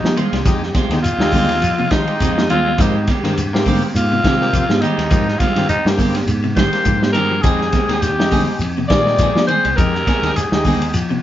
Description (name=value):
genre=afrobeat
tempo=103 BPM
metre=4/4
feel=swing 55% on 16ths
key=F dorian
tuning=A4 = 440 Hz
part: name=raspy alto saxophone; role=melody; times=0.0-10.9 s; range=Eb4 to D5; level=-19 LUFS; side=left 1 dB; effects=none
part: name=electric guitar at the edge of break-up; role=arpeggios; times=0.0-11.2 s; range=C3 to G3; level=-24 LUFS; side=left 5 dB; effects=none
part: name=fingered electric bass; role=bass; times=0.0-11.2 s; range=C2 to F3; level=-22 LUFS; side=equal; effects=none
part: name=vintage drum kit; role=drums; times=0.0-11.1 s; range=hi-hat, kick drum, ride cymbal, snare drum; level=-19 LUFS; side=equal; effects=none
part: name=congas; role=percussion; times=0.0-11.2 s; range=none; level=-23 LUFS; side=right 3 dB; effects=none
part: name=semi-hollow electric guitar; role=stabs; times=0.2-10.8 s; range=Eb3 to Ab4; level=-25 LUFS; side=right 2 dB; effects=spring reverb
part: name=shekere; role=percussion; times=0.2-11.1 s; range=none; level=-24 LUFS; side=equal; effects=none
part: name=combo organ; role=accompaniment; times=0.5-10.8 s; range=Ab3 to G4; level=-27 LUFS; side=left 1 dB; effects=spring reverb
room=moderate studio ambience, RT60 0.5 s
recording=band playing live in one room, nothing above 7.6 kHz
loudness=-14 LUFS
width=side -12 dB against mid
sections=0.0-11.2 A section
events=alto saxophone solo 0.0-11.2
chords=0.0 Fm7; 2.8 Abmaj7; 7.4 Fm7